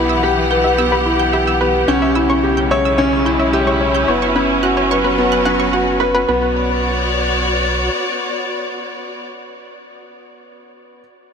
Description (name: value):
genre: piano and strings electronica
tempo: 109 BPM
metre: 4/4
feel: straight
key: B minor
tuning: A4 = 438 Hz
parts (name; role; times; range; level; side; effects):
- rich studio string section; sustained chords; 0.0-9.3 s; C#3 to F#5; -19 LUFS; equal; none
- analog pluck; arpeggios; 0.0-6.5 s; B4 to G6; -23 LUFS; right 1 dB; chorus, ping-pong delay
- warm upright piano; riff; 0.0-11.0 s; B3 to C#5; -17 LUFS; left 1 dB; ping-pong delay
- warm sub bass; bass; 0.0-7.9 s; F#1 to B1; -23 LUFS; equal; none
room: moderate huge ambient reverb, RT60 7.6 s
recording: none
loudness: -13 LUFS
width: side -6 dB against mid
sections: 0.0-6.3 A section; 6.3-8.5 B section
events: drop 0.0-6.3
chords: 0.0 Em/B; 1.9 C#dim/B; 4.1 F#sus4; 6.3 Bm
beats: 0.23 0.78 1.33 | 1.88 2.43 2.98 3.53 | 4.08 4.63 5.19 5.74 | 6.29 6.84 7.39 7.94